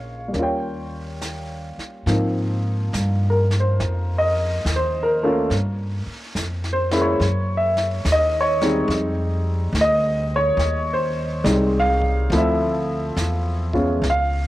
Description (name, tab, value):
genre	jazz ballad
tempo	70 BPM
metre	4/4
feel	swing 66% on 8ths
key	Ab major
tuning	A4 = 442 Hz
part	warm upright piano	accompaniment	0.0-14.5 s	F3 to G5	-21 LUFS	equal	cassette tape
part	upright bass	bass	0.0-14.5 s	Bb1 to Ab2	-23 LUFS	equal	none
part	jazz brush drum kit	drums	0.3-14.5 s	brushed snare drum, hi-hat, kick drum, snare drum	-33 LUFS	equal	cassette tape
room	light reverb, small room ambience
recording	home recording on cassette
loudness	-18 LUFS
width	side -16 dB against mid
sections	0.0-2.1 A section; 2.1-14.5 B section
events	none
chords	0.3 Eb7; 2.1 Ab69; 5.5 Gm7b5; 7.2 Gbsus2; 8.9 Fm9; 12.3 Dm9